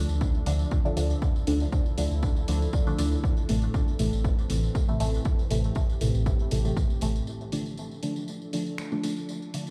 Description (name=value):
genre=dub techno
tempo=119 BPM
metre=4/4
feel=swing 53% on 16ths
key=D minor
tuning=A4 = 439 Hz
part: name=warbly tape-like pad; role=sustained chords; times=0.0-9.7 s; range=E3 to A4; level=-41 LUFS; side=equal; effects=chorus, built-in reverb, phaser, sidechain pumping
part: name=deep mellow chord stab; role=stabs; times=0.0-9.7 s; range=A2 to D4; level=-32 LUFS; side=equal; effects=chorus, phaser, sidechain pumping, dub echo
part: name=warm sub bass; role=bass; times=0.0-7.2 s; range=A1 to D2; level=-29 LUFS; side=equal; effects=sidechain pumping
part: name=tambourine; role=percussion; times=0.1-9.7 s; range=none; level=-46 LUFS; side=equal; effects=none
part: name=electronic kick drum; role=drums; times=0.2-6.9 s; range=none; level=-28 LUFS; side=equal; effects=none
part: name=punchy analog drum machine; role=drums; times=0.5-9.6 s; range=finger snaps, hi-hat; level=-45 LUFS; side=equal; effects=none
room=little or no reverb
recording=played on a big sound system in a bare room, large studio reverb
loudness=-27 LUFS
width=mono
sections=0.0-7.3 A section; 7.3-9.7 B section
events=none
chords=0.0 Dm; 3.2 Am; 7.3 Dm